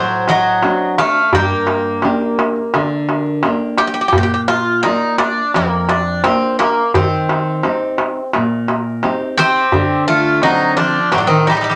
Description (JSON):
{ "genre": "greek folk, Greek bouzouki band", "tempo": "86 BPM", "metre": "4/4", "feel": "straight", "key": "unclear", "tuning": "A4 = 440 Hz", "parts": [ { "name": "Greek bouzouki", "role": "melody", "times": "0.0-11.8 s", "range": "Bb3 to G5", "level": "-19 LUFS", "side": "equal", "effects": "none" }, { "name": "Greek bouzouki", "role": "second line", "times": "0.0-3.4, 9.4-11.8 s", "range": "Eb3 to C4", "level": "-19 LUFS", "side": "equal", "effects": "none" }, { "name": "nylon-string guitar", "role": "accompaniment", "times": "0.0-11.8 s", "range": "F2 to F#5", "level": "-22 LUFS", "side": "equal", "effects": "none" }, { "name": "darbuka", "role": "percussion", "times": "0.3-11.6 s", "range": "none", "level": "-21 LUFS", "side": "equal", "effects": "none" } ], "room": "wet studio ambience, RT60 0.5 s", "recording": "none", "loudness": "-15 LUFS", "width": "mono", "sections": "0.0-4.1 A section; 4.1-11.8 A section", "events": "none", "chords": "0.0 D7; 1.3 Gm; 4.1 Bb; 6.9 Eb6; 9.7 D7" }